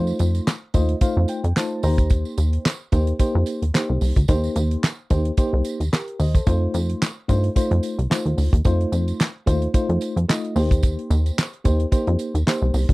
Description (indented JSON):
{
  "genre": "early-eighties boogie funk",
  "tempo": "110 BPM",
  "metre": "4/4",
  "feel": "swing 56% on 16ths",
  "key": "Eb lydian",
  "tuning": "A4 = 441 Hz",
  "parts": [
    { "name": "FM electric piano with auto-pan", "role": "accompaniment", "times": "0.0-12.9 s", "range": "A3 to Bb5", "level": "-25 LUFS", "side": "equal", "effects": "none" },
    { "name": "plucky analog bass", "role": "bass", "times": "0.0-12.9 s", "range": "C2 to G2", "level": "-20 LUFS", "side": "equal", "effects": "none" },
    { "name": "tambourine", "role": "percussion", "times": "0.1-12.9 s", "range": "none", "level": "-39 LUFS", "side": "right 9 dB", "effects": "none" },
    { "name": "damped 70s drum kit", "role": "drums", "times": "0.2-12.9 s", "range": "handclaps, hi-hat, kick drum, snare drum", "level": "-20 LUFS", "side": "equal", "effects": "none" }
  ],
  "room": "little or no reverb",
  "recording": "dry, close 1970s-style studio recording",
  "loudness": "-18 LUFS",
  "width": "side -21 dB against mid",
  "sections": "0.0-12.9 A section",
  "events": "FM electric piano fill 0.5-2.1",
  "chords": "0.0 F7; 1.8 Eb6; 6.5 F7; 10.6 Eb6",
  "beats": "0.47 1.01 1.56 | 2.11 2.65 3.20 3.74 | 4.29 4.83 5.38 5.92 | 6.47 7.01 7.56 8.11 | 8.65 9.20 9.74 10.29 | 10.83 11.38 11.92 12.47"
}